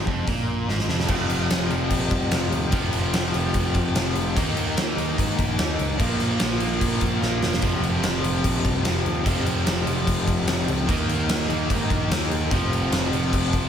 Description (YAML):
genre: hard rock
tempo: 147 BPM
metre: 4/4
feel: straight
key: unclear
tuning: A4 = 439 Hz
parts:
  - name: overdriven electric guitar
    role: riff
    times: 0.0-13.7 s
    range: F2 to Eb4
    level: -29 LUFS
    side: left 8 dB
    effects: tremolo
  - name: overdriven electric guitar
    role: riff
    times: 0.0-13.7 s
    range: F2 to Eb4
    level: -28 LUFS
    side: right 6 dB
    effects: slapback echo
  - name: picked electric bass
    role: bass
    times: 0.0-13.7 s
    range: E1 to Ab2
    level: -28 LUFS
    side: equal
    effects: none
  - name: huge arena drum kit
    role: drums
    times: 0.1-13.6 s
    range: crash cymbal, hi-hat, kick drum, snare drum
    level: -24 LUFS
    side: equal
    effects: none
  - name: distorted electric guitar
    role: riff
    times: 1.1-13.7 s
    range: F2 to Eb4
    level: -31 LUFS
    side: equal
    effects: overdrive, slapback echo
room: moderate lush hall reverb, RT60 1.8 s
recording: big arena sound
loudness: -20 LUFS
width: side -8 dB against mid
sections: 0.0-1.1 A section; 1.1-13.7 B section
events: drum fill 0.7-1.1, 7.2-7.6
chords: 0.0 Fm; 1.1 F5; 4.4 Eb5; 6.0 Bb5; 7.6 F5; 10.9 Eb5; 12.5 F5